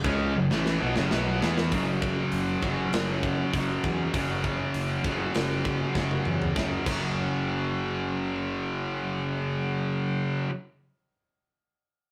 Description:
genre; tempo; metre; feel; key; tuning
heavy metal; 99 BPM; 4/4; straight; unclear; A4 = 441 Hz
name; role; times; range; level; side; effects
distorted electric guitar; riff; 0.0-10.5 s; F#2 to E4; -32 LUFS; equal; distortion
scooped high-gain guitar; riff; 0.0-10.5 s; F#2 to E4; -34 LUFS; equal; distortion
fuzz fingered electric bass; bass; 0.0-10.4 s; F#1 to E2; -34 LUFS; equal; overdrive
tight metal drum kit; drums; 0.0-7.0 s; crash cymbal, hi-hat, kick drum, snare drum, toms; -34 LUFS; equal; none
room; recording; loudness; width
light reverb; rough rehearsal-room recording, warm saturation; -28 LUFS; mono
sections
0.0-1.7 A section; 1.7-6.6 B section; 6.6-9.0 C section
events
drum fill 0.5-1.7, 6.0-6.6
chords
0.0 F#m; 1.7 F#5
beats
0.50 1.11 | 1.71 2.32 2.93 3.53 | 4.14 4.75 5.35 5.96 | 6.57 7.17 7.78 8.38

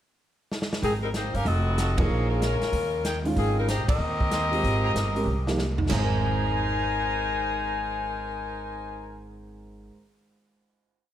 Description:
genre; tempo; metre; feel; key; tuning
jazz, big band swing; 189 BPM; 4/4; swing 64% on 8ths; Ab major; A4 = 440 Hz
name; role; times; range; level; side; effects
swinging big-band drum kit; drums; 0.5-6.0 s; crash cymbal, hi-hat, kick drum, ride cymbal, snare drum, toms; -30 LUFS; right 1 dB; none
clear saxophone section; melody; 0.8-9.2 s; Eb3 to Ab5; -28 LUFS; left 3 dB; none
warm trumpet section; stabs; 0.8-9.2 s; F4 to C6; -36 LUFS; right 1 dB; none
upright bass; bass; 0.8-9.9 s; F1 to Eb2; -28 LUFS; equal; none
warm concert grand piano; accompaniment; 2.0-10.0 s; Ab2 to Bb4; -31 LUFS; right 2 dB; none
room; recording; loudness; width
moderate recital hall reverb, RT60 1.4 s; none; -23 LUFS; side -11 dB against mid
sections
0.0-0.8 pickup bar; 0.8-5.9 A section; 5.9-8.4 final chord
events
drum fill 0.5-0.8, 5.3-5.9; band accent 1.9, 3.8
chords
0.0 N.C.; 0.8 Abmaj9; 1.5 F7b9; 2.1 Bbm7; 2.7 Eb9; 3.4 Abmaj9; 5.9 Abadd9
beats
0.19 0.51 | 0.82 1.14 1.46 1.77 | 2.09 2.41 2.73 3.04 | 3.36 3.68 4.00 4.31 | 4.63 4.95 5.26 5.58 | 5.90 6.21 6.53 6.85 | 7.16 7.48 7.80 8.11

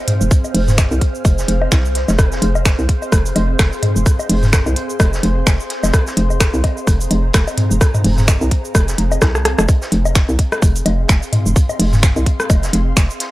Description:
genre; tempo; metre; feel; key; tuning
minimal techno; 128 BPM; 4/4; swing 57% on 16ths; F minor; A4 = 437 Hz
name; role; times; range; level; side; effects
ethereal airy pad; texture; 0.0-13.3 s; C4 to F6; -28 LUFS; equal; ensemble chorus, built-in reverb, sidechain pumping
pulsing gated texture; texture; 0.0-9.7 s; C5; -29 LUFS; right 2 dB; chorus, built-in reverb, sidechain pumping
minimal click drum kit; drums; 0.1-13.3 s; cabasa, finger snaps, hi-hat, rim click; -21 LUFS; right 1 dB; none
vintage drum kit; drums; 0.1-13.3 s; hi-hat, snare drum; -32 LUFS; equal; sidechain pumping on hats, high-pass filter on hats, high-pass filter on snare, high-pass filter on room
booming analog drum machine; percussion; 0.1-13.1 s; rim click, toms, woodblock; -20 LUFS; left 1 dB; none
hollow knocking FM bass; bass; 0.2-13.1 s; F1 to C2; -16 LUFS; equal; sidechain pumping
electronic kick drum; drums; 0.3-13.1 s; none; -13 LUFS; equal; none
room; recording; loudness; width
little or no reverb; dry, gritty hardware recording; -13 LUFS; side -17 dB against mid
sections
0.0-9.7 A section; 9.7-13.3 B section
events
drum fill 9.2-9.7; drop 9.7-13.3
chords
0.0 Fm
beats
| 0.31 0.78 1.25 1.72 | 2.19 2.65 3.12 3.59 | 4.06 4.53 5.00 5.47 | 5.94 6.41 6.87 7.34 | 7.81 8.28 8.75 9.22 | 9.69 10.15 10.62 11.09 | 11.56 12.03 12.50 12.97

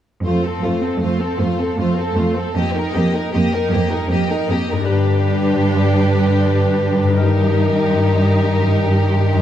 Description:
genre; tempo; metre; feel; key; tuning
cinematic; 156 BPM; 3/4; straight; unclear; A4 = 440 Hz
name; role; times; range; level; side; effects
clear symphonic violin section; melody; 0.2-9.4 s; A4 to Eb5; -28 LUFS; left 4 dB; none
rich symphonic viola section; accompaniment; 0.2-9.4 s; A3 to Eb4; -23 LUFS; right 1 dB; none
rich symphonic cello section; bass; 0.2-9.4 s; F2 to G2; -18 LUFS; right 2 dB; none
rich symphonic violin section; second line; 0.3-9.4 s; F4 to Bb4; -24 LUFS; left 2 dB; none
concert harp; arpeggios; 4.7-9.4 s; F2 to B4; -22 LUFS; left 6 dB; none
mellow French horn section; sustained chords; 4.9-9.4 s; D3 to B4; -21 LUFS; left 1 dB; none
room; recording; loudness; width
wet scoring stage reverb, RT60 1.8 s; dark, warm production; -15 LUFS; side -11 dB against mid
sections
0.3-4.9 A section; 4.9-9.4 B section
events
build-up 4.9-9.4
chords
0.3 F; 2.6 Eb/F; 4.9 G; 7.2 Eb/G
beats
| 0.26 0.64 1.03 | 1.42 1.80 2.18 | 2.57 2.95 3.33 | 3.72 4.11 4.50 | 4.89 5.28 5.66 | 6.05 6.44 6.82 | 7.21 7.59 7.98 | 8.36 8.74 9.13

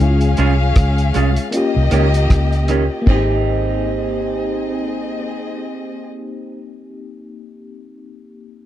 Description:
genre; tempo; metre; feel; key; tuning
lovers rock reggae; 78 BPM; 4/4; swing 58% on 16ths; Ab major; A4 = 441 Hz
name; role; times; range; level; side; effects
warm studio violin section; second line; 0.0-6.1 s; Bb3 to F5; -25 LUFS; left 3 dB; none
FM electric piano with tremolo; accompaniment; 0.0-8.7 s; Ab3 to Ab4; -24 LUFS; left 4 dB; none
vintage muted fingered electric bass; bass; 0.0-6.0 s; Ab1 to Db2; -17 LUFS; equal; none
cloth-damped thuddy drum kit; drums; 0.2-3.3 s; hi-hat, kick drum, rim click; -16 LUFS; equal; none
electric guitar through a small old amp; stabs; 0.4-6.6 s; Eb3 to Ab4; -22 LUFS; right 5 dB; none
room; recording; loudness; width
small room ambience; dark, warm production; -15 LUFS; side -12 dB against mid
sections
0.0-3.1 A section; 3.1-6.2 B section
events
none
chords
0.0 Db; 1.5 Eb7; 3.1 Abmaj7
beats
| 0.00 0.77 1.54 2.31 | 3.08 3.85 4.62 5.38

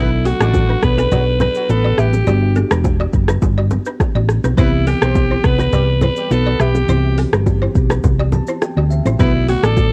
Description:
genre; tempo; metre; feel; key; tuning
afrobeats; 104 BPM; 4/4; straight; unclear; A4 = 444 Hz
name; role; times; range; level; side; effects
raspy alto saxophone; melody; 0.0-9.9 s; E4 to B4; -22 LUFS; equal; cassette tape
warm horn section; second line; 0.0-9.9 s; F#3 to D5; -28 LUFS; equal; cassette tape
bell-like tine electric piano; accompaniment; 0.0-9.9 s; C#3 to A5; -27 LUFS; equal; phaser, cassette tape
balafon; riff; 0.0-9.7 s; A3 to E5; -28 LUFS; equal; cassette tape, analog delay
hollow-body short-scale fingered electric bass; bass; 0.0-9.9 s; E1 to D2; -18 LUFS; equal; none
afro-pop drum kit; drums; 0.3-9.9 s; hi-hat, kick drum, rim click, shaker; -20 LUFS; equal; none
bongos and congas; percussion; 0.3-9.9 s; none; -25 LUFS; equal; none
room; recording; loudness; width
small room ambience; home recording on cassette; -15 LUFS; mono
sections
0.0-9.9 A section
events
tine electric piano fill 8.0-9.2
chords
0.0 Bm7; 2.3 Gmaj7; 4.6 Cmaj7; 9.2 Bm7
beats
0.54 1.12 1.69 | 2.27 2.85 3.42 4.00 | 4.58 5.16 5.73 6.31 | 6.88 7.46 8.04 8.62 | 9.19 9.77

